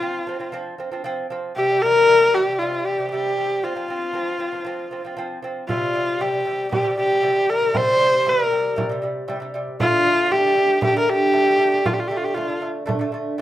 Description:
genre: mongolian traditional, Mongolian folk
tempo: 117 BPM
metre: 4/4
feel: straight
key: unclear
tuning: A4 = 440 Hz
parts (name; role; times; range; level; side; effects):
- clear horsehead fiddle; melody; 0.0-12.6 s; F4 to C5; -18 LUFS; left 1 dB; none
- lute; arpeggios; 0.0-13.4 s; C3 to C4; -27 LUFS; right 2 dB; none
- frame drum; percussion; 5.7-13.0 s; none; -28 LUFS; right 2 dB; none
room: wet studio reverb, RT60 0.6 s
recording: rough home demo mix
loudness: -18 LUFS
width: side -13 dB against mid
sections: 0.0-5.7 A section; 5.7-13.4 B section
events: none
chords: 0.0 F5; 1.6 C5; 3.6 F5; 5.7 C5; 9.8 D5

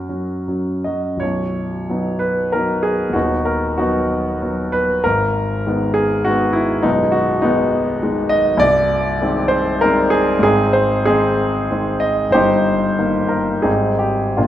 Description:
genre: classical, romantic character piece for solo piano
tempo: 76-104 BPM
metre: 3/4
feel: rubato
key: B major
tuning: A4 = 440 Hz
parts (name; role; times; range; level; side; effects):
- clear grand piano; solo; 0.0-14.5 s; B0 to D#5; -15 LUFS; equal; none
room: wet recital hall reverb, RT60 1.7 s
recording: none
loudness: -15 LUFS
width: side -12 dB against mid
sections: 0.0-1.2 A section; 1.2-14.5 B section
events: none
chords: 0.0 F#; 1.2 B; 3.2 B/D#; 5.1 G#m; 6.9 G#m/B; 8.6 Ab/C; 10.5 Ab; 12.3 Eb/G; 13.7 Abmaj7

